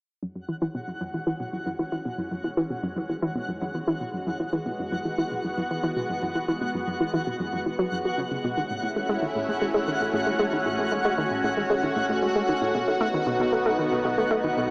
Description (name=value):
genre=ambient, sequencer-driven space music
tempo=115 BPM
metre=4/4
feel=straight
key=F# dorian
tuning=A4 = 439 Hz
part: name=lush unison pad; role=sustained chords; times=0.7-14.7 s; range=G#3 to F#4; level=-28 LUFS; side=equal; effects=chorus, phaser
part: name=analog pluck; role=riff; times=0.2-14.7 s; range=F#2 to A3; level=-27 LUFS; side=equal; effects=chorus, tape echo
part: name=round analog bass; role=bass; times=0.2-14.7 s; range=F#1 to B1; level=-51 LUFS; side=equal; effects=none
part: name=twinkling granular texture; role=texture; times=0.5-14.7 s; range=F#4 to F#5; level=-31 LUFS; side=equal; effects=built-in reverb
room=wet huge ambient reverb, RT60 7.6 s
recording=small speaker sound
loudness=-24 LUFS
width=side -39 dB against mid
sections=0.2-14.7 A section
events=fade-in on analog synth pad 0.2-14.7; filter sweep on synth arpeggio sound 0.2-14.7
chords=0.2 F#sus2; 8.6 A; 12.7 B